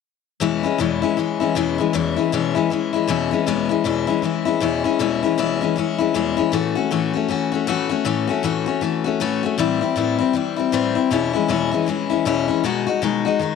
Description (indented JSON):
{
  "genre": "rock",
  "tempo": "157 BPM",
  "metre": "4/4",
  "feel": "swing 61% on 8ths",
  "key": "E major",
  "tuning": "A4 = 437 Hz",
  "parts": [
    { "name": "picked steel-string acoustic guitar", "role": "solo", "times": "0.4-13.6 s", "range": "E2 to F#4", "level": "-18 LUFS", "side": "left 8 dB", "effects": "none" }
  ],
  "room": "moderate plate reverb, RT60 3.6 s",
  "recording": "none",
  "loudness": "-18 LUFS",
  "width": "side -5 dB against mid",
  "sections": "0.4-13.6 A section",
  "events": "none",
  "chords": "0.4 E6; 6.5 A6; 9.6 Am7; 11.1 E6; 12.6 B6"
}